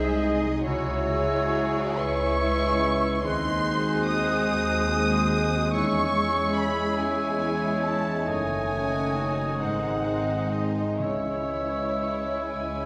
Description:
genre	classical, slow romantic movement for symphony orchestra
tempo	39-49 BPM (dotted quarters)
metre	6/8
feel	rubato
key	C# minor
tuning	A4 = 440 Hz
part	muted studio violin section	melody	0.0-12.9 s	C#5 to D#6	-33 LUFS	equal	none
part	muted studio violin section	second line	0.0-12.9 s	D#4 to D#5	-39 LUFS	equal	none
part	silver concert flute	second line	0.0-12.9 s	D#6 to F#6	-35 LUFS	equal	none
part	warm clarinet	second line	0.0-12.9 s	B#4 to C#5	-36 LUFS	equal	none
part	dark bassoon	accompaniment	0.0-12.9 s	E3 to A3	-35 LUFS	equal	none
part	muted studio viola section	accompaniment	0.0-12.9 s	G#3 to F#4	-35 LUFS	equal	none
part	mellow French horn section	sustained chords	0.0-12.9 s	D#3 to E4	-34 LUFS	equal	none
part	concert harp	arpeggios	0.0-12.9 s	F#2 to C#6	-38 LUFS	equal	none
part	muted studio cello section	bass	0.0-12.9 s	C#4 to G#4	-38 LUFS	equal	none
part	muted studio double bass section	bass	0.0-12.9 s	F#1 to E2	-34 LUFS	equal	none
part	timpani	percussion	11.0-12.5 s	C#3	-41 LUFS	equal	none
room	wet scoring stage reverb, RT60 1.4 s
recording	none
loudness	-25 LUFS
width	mono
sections	0.0-12.9 A section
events	none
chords	0.0 G#7/B#; 0.7 C#m; 3.2 G#7/D#; 5.7 C#m/E; 8.3 D#m7b5/F#; 9.6 G#7; 11.0 C#m

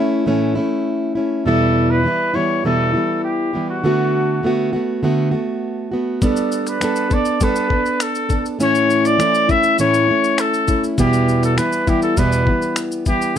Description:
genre	acoustic pop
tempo	101 BPM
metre	4/4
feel	straight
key	unclear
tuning	A4 = 442 Hz
part	fingerpicked plugged-in steel-string acoustic guitar	accompaniment	0.0-13.4 s	E2 to A4	-17 LUFS	equal	none
part	warm trumpet	melody	1.5-13.4 s	F#4 to E5	-19 LUFS	left 1 dB	none
part	dusty soul sampler-style drum kit	drums	6.2-13.4 s	finger snaps, kick drum, shaker	-22 LUFS	left 2 dB	none
room	light reverb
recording	close, detailed microphones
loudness	-15 LUFS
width	side -9 dB against mid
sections	0.0-13.4 A section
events	none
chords	0.0 A; 1.5 Em; 3.8 D6; 6.2 Gadd9; 8.6 A; 11.0 Em

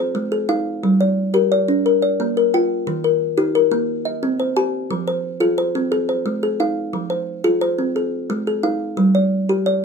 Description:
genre	southern african traditional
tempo	118 BPM (dotted quarters)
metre	12/8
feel	straight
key	F equiheptatonic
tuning	A4 = 440 Hz
part	kalimba	solo	0.0-9.8 s	Eb3+29c to Ab5+43c	-17 LUFS	left 1 dB	none
room	light reverb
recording	minimal, uncompressed stereo recording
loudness	-17 LUFS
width	side -5 dB against mid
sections	0.0-9.8 A section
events	none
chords	0.0 Ab; 0.8 Gm; 1.9 Bb; 2.9 Eb; 3.9 Cm; 4.9 Fm; 5.9 Ab; 6.9 Fm; 8.0 Ab; 9.0 G5

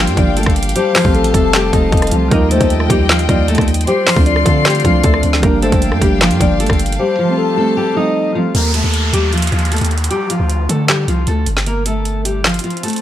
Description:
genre	hip hop, trap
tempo	154 BPM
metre	4/4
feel	half-time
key	G minor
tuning	A4 = 439 Hz
part	fingerpicked steel-string acoustic guitar	melody	0.0-13.0 s	F3 to Eb5	-18 LUFS	equal	low-pass filter, digital delay
part	soft electric-piano-like synth keys	accompaniment	0.0-8.6 s	F3 to F4	-19 LUFS	right 2 dB	chorus, low-pass filter
part	dark chamber string section	sustained chords	0.0-8.5 s	F4 to C6	-22 LUFS	left 5 dB	none
part	long sustained 808-style bass	bass	0.0-12.6 s	F1 to D3	-17 LUFS	equal	none
part	trap drum kit	drums	0.1-13.0 s	handclaps, hi-hat, kick drum, rim click, snare drum	-16 LUFS	equal	none
part	hollow clarinet-like synth lead	second line	0.2-8.5 s	A4 to D5	-20 LUFS	left 4 dB	chorus, digital delay
part	downlifter and swell	sound effects	8.5-13.0 s	none	-23 LUFS	equal	none
room	little or no reverb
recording	none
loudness	-12 LUFS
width	side -12 dB against mid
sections	0.0-8.5 A section; 8.5-13.0 B section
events	break 7.0-8.5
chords	0.0 Gm7; 0.8 Fadd9; 2.3 Ebadd9; 3.9 Dm7; 5.4 Gm7; 7.0 Fadd9; 8.5 Ebadd9; 10.1 Dm7; 11.7 Gm7

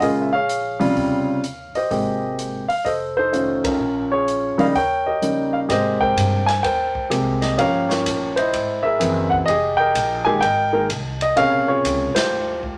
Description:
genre	jazz piano trio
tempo	127 BPM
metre	4/4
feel	swing 66% on 8ths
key	Ab major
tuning	A4 = 440 Hz
part	dark grand piano	melody	0.0-12.8 s	C3 to Ab5	-21 LUFS	equal	none
part	upright bass	bass	0.0-12.8 s	F1 to Ab2	-31 LUFS	equal	none
part	swinging big-band drum kit	drums	0.0-12.7 s	hi-hat, kick drum, ride cymbal, snare drum	-32 LUFS	equal	none
room	moderate studio ambience, RT60 0.5 s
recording	none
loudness	-20 LUFS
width	mono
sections	0.0-5.7 A section; 5.7-12.8 B section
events	band accent 3.6, 12.1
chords	0.0 Bbm7; 1.0 Eb13; 1.9 Abmaj9; 2.9 F7b13; 3.8 Bbm7; 4.7 Eb7; 5.7 Abmaj9; 7.6 Gm7b5; 8.5 C7alt; 9.5 Fm11; 11.4 Bbm9

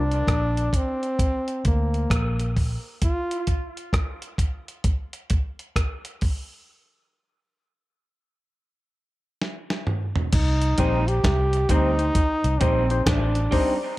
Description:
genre	dub reggae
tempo	66 BPM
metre	4/4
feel	swing 64% on 16ths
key	C dorian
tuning	A4 = 440 Hz
part	clear trombone	melody	0.0-3.5, 10.3-13.8 s	Bb3 to G4	-26 LUFS	equal	dub echo
part	percussive organ stab	stabs	0.0, 10.8-13.7 s	C4 to C5	-29 LUFS	left 4 dB	chorus, dub echo
part	vintage muted fingered electric bass	bass	0.0-2.8, 10.3-13.5 s	A1 to D2	-23 LUFS	equal	none
part	dusty soul sampler-style drum kit	drums	0.1-13.8 s	crash cymbal, hi-hat, kick drum, rim click, snare drum, toms	-24 LUFS	equal	none
part	electric guitar through a small old amp	accompaniment	10.8-13.8 s	G3 to Eb4	-29 LUFS	right 3 dB	dub echo
room	light reverb, digital ambience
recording	none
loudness	-21 LUFS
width	side -18 dB against mid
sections	0.0-10.3 A section; 10.3-14.0 B section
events	break 0.0-10.3; drum fill 9.4-10.3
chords	0.0 Bb; 3.0 N.C.; 10.3 Cm

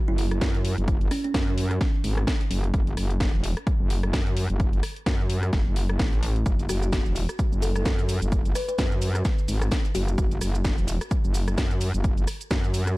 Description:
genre	bass house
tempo	129 BPM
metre	4/4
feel	swing 57% on 16ths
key	F# minor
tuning	A4 = 443 Hz
part	kalimba	melody	0.1-1.3, 6.7-10.6 s	C#4 to B4	-33 LUFS	right 1 dB	ping-pong delay
part	metallic wobble bass	bass	0.1-13.0 s	E1 to F#2	-25 LUFS	equal	chorus, sidechain pumping
part	house drum kit	drums	0.2-13.0 s	hi-hat, rim click, shaker, snare drum	-32 LUFS	equal	none
part	electronic kick drum	drums	0.4-12.6 s	none	-25 LUFS	equal	overdrive
room	digital ambience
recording	dark, warm production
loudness	-22 LUFS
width	side -20 dB against mid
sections	0.0-13.0 A section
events	none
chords	none

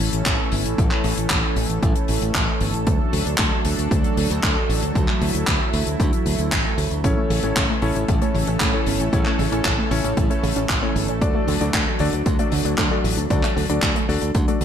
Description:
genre	italo disco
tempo	115 BPM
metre	4/4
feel	straight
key	unclear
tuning	A4 = 441 Hz
part	lush unison pad	sustained chords	0.0-14.6 s	E3 to A4	-25 LUFS	right 1 dB	chorus
part	modern bright fingered electric bass	bass	0.0-14.6 s	G1 to D2	-25 LUFS	equal	digital delay
part	damped 70s drum kit	drums	0.0-14.6 s	handclaps, hi-hat	-25 LUFS	left 1 dB	studio reverb, gated reverb
part	electronic kick drum	drums	0.3-14.5 s	none	-23 LUFS	equal	overdrive, studio reverb
part	warbly dusty pluck	arpeggios	7.0-14.6 s	C#3 to D4	-27 LUFS	right 1 dB	analog chorus, digital delay
part	warm electric grand piano	stabs	7.0-14.6 s	C#4 to D5	-26 LUFS	left 3 dB	digital delay
room	light reverb, small room ambience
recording	faint mains hum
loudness	-18 LUFS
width	side -9 dB against mid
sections	0.0-14.6 A section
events	none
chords	0.0 A; 2.9 D; 7.0 A; 11.2 D

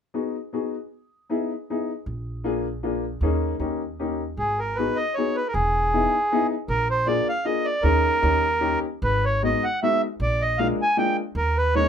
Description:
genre	musette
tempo	156 BPM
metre	3/4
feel	swing 54% on 8ths, rubato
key	G# minor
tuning	A4 = 440 Hz
part	clear upright piano	accompaniment	0.1-11.9 s	G#3 to G#4	-25 LUFS	left 4 dB	none
part	upright bass	bass	2.1-11.9 s	E1 to D#2	-26 LUFS	right 1 dB	none
part	accordion	melody	4.4-11.9 s	G#4 to G#5	-22 LUFS	right 2 dB	none
room	moderate small room reverb, RT60 0.5 s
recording	minimal, uncompressed stereo recording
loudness	-21 LUFS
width	side -8 dB against mid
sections	0.0-4.4 A section; 4.4-11.9 B section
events	none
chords	0.0 G#m7; 0.9 Emaj7; 2.1 A#7; 3.2 D#7sus4; 3.6 D#7; 4.4 G#m7; 5.5 Emaj7; 6.7 A#7; 7.8 D#7sus4; 8.2 D#7; 9.0 G#m7; 10.2 A#7; 11.4 D#7sus4

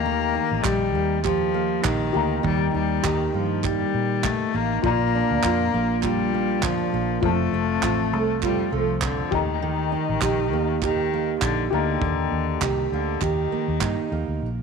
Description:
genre	acoustic pop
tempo	100 BPM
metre	4/4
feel	swing 55% on 16ths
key	unclear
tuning	A4 = 442 Hz
part	clear cello	second line	0.0-14.1 s	D3 to Bb3	-26 LUFS	left 12 dB	none
part	dark upright piano	accompaniment	0.0-14.4 s	F4 to Bb5	-30 LUFS	left 14 dB	none
part	fingerpicked steel-string acoustic guitar	accompaniment	0.0-14.6 s	F2 to G4	-26 LUFS	right 11 dB	none
part	vintage muted fingered electric bass	bass	0.0-14.6 s	F1 to Bb2	-28 LUFS	equal	none
part	modern studio drum kit	drums	0.6-14.0 s	handclaps, kick drum	-30 LUFS	right 3 dB	none
part	group handclap	percussion	0.7-14.0 s	none	-34 LUFS	right 14 dB	none
room	light reverb, studio reverb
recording	1960s-style stereo with parts hard left and right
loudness	-21 LUFS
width	side -5 dB against mid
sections	0.0-14.4 A section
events	none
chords	0.0 Eb; 4.8 Bb; 7.2 F; 9.3 Eb

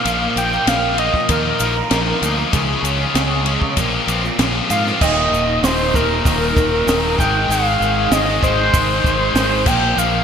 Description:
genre	indie rock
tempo	97 BPM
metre	4/4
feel	straight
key	Eb major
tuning	A4 = 440 Hz
part	overdriven synth lead	melody	0.0-10.2 s	Bb4 to G5	-19 LUFS	equal	ping-pong delay
part	overdriven electric guitar	riff	0.0-10.2 s	Eb2 to Ab4	-20 LUFS	left 6 dB	none
part	thick fuzz guitar	riff	0.0-10.2 s	Eb2 to F4	-23 LUFS	right 6 dB	distortion, ensemble chorus
part	growling fingered electric bass	bass	0.1-10.2 s	Eb1 to Ab2	-22 LUFS	equal	overdrive
part	compact cocktail drum kit	drums	0.1-9.8 s	crash cymbal, hi-hat, kick drum, ride cymbal, snare drum	-22 LUFS	right 1 dB	gated reverb
part	tube shaker	percussion	0.1-10.1 s	none	-33 LUFS	right 9 dB	none
part	bright tonewheel organ	sustained chords	5.0-10.2 s	Eb3 to F5	-31 LUFS	equal	none
room	moderate lush hall reverb, RT60 2.9 s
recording	bright 1980s-style digital production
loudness	-14 LUFS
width	side -7 dB against mid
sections	0.0-5.0 A section; 5.0-10.2 B section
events	analog synth lead solo 0.0-5.0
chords	0.0 Bbsus4; 2.5 Db; 3.8 Bbsus2; 5.0 Ebadd9; 7.2 Ab; 9.7 Bbsus4

